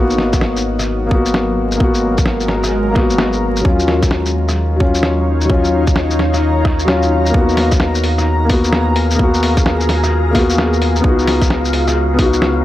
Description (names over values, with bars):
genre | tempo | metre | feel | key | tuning
future garage | 130 BPM | 4/4 | swing 63% on 16ths | G# dorian | A4 = 440 Hz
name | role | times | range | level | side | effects
felt-muted upright piano | accompaniment | 0.0-12.6 s | F#3 to F#4 | -16 LUFS | left 2 dB | sidechain pumping, tape echo
granular cloud pad | sustained chords | 0.0-12.6 s | F#3 to A#5 | -22 LUFS | equal | built-in reverb, sidechain pumping
warm sub bass | bass | 0.0-12.6 s | G#1 to D#2 | -18 LUFS | equal | sidechain pumping
lo-fi sampler-style drum kit | drums | 0.1-12.5 s | hi-hat, rim click, shaker, snare drum | -20 LUFS | equal | none
electronic kick drum | drums | 0.3-12.3 s | none | -16 LUFS | equal | none
wind-like tuned noise texture | texture | 8.5-12.6 s | E#4 to E#5 | -25 LUFS | right 1 dB | built-in reverb
room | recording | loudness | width
digital ambience | dry, gritty hardware recording, vinyl crackle | -12 LUFS | side -14 dB against mid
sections
0.0-12.6 A section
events
none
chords
0.0 G#m9; 3.6 D#m9; 7.3 G#m9/D#; 11.0 C#9sus4